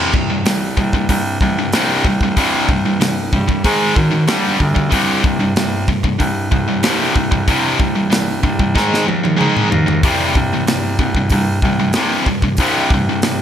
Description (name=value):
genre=heavy metal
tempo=94 BPM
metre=4/4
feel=straight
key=C minor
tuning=A4 = 439 Hz
part: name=high-gain distorted guitar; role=riff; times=0.0-13.4 s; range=C2 to Ab3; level=-16 LUFS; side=equal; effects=distortion
part: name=clear baritone saxophone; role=bass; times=0.0-13.4 s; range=C2 to Ab2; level=-21 LUFS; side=equal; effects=none
part: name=modern studio drum kit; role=drums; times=0.1-13.4 s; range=hi-hat, kick drum, snare drum, toms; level=-18 LUFS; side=equal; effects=gated reverb
room=moderate plate reverb, RT60 2.5 s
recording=bright 1980s-style digital production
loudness=-13 LUFS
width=side -9 dB against mid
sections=0.0-13.4 A section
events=drum fill 8.8-10.0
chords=0.0 C5; 3.6 Ab5; 4.3 G5; 4.9 C5; 8.8 Ab5; 10.0 C5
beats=0.46 1.10 1.74 | 2.37 3.01 3.65 4.29 | 4.92 5.56 6.20 6.84 | 7.47 8.11 8.75 9.39 | 10.03 10.67 11.31 11.94 | 12.58 13.22